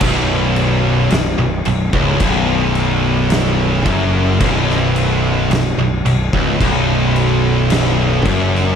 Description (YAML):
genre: stoner and doom metal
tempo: 55 BPM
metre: 4/4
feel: straight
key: unclear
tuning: A4 = 440 Hz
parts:
  - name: heavy high-gain guitar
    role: riff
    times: 0.0-8.8 s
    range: B1 to F#2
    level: -19 LUFS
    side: right 1 dB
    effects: distortion
  - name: thick fuzz guitar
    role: riff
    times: 0.0-8.8 s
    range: B1 to F#2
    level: -20 LUFS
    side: left 8 dB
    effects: distortion
  - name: thick fuzz guitar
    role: riff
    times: 0.0-8.8 s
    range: B1 to F#2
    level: -20 LUFS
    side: right 6 dB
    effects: distortion
  - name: fuzz fingered electric bass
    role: bass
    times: 0.0-8.8 s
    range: B0 to F#1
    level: -20 LUFS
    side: equal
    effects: overdrive
  - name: oversized low-tuned drum kit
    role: drums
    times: 0.0-8.7 s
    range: crash cymbal, kick drum, snare drum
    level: -20 LUFS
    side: equal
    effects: none
room: light reverb, small room ambience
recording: none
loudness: -13 LUFS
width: side -7 dB against mid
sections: 0.0-8.8 A section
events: none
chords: 0.0 B5